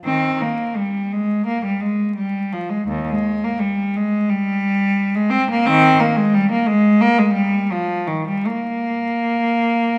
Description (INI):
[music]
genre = classical, baroque-style suite movement for unaccompanied cello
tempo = 86 BPM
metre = 4/4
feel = uneven beats, rubato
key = unclear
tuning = A4 = 444 Hz
[part]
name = rich cello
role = solo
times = 0.1-10.0 s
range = Eb2 to C4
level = -19 LUFS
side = equal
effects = none
[sound]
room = wet recital hall reverb, RT60 1.7 s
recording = vinyl crackle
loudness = -19 LUFS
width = mono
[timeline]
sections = 0.0-10.0 A section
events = none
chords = none